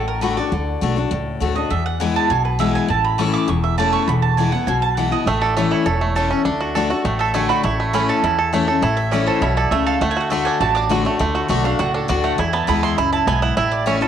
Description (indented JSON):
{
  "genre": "bluegrass",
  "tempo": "202 BPM",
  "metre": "4/4",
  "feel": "straight",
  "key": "A major",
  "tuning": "A4 = 441 Hz",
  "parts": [
    { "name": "picked steel-string acoustic guitar", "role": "accompaniment", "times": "0.0-14.1 s", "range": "E2 to F#4", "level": "-21 LUFS", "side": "left 7 dB", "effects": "cassette tape" },
    { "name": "mandolin", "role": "stabs", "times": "0.0-14.1 s", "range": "A4 to D6", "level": "-23 LUFS", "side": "right 10 dB", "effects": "cassette tape" },
    { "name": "upright bass", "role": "bass", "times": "0.0-14.0 s", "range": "E1 to E2", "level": "-23 LUFS", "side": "right 1 dB", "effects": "none" },
    { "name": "bluegrass banjo", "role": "melody", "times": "5.3-14.1 s", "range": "A3 to A4", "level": "-21 LUFS", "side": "right 4 dB", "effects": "cassette tape" }
  ],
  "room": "moderate spring reverb, RT60 2.0 s, studio ambience",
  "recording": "home recording on cassette",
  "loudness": "-16 LUFS",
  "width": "side -9 dB against mid",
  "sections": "0.0-14.1 A section",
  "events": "mandolin solo 0.0-14.1",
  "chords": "0.0 D; 1.7 E; 2.9 A; 4.1 E; 5.3 A; 6.5 D; 7.6 A; 10.0 D; 12.4 E; 13.6 A"
}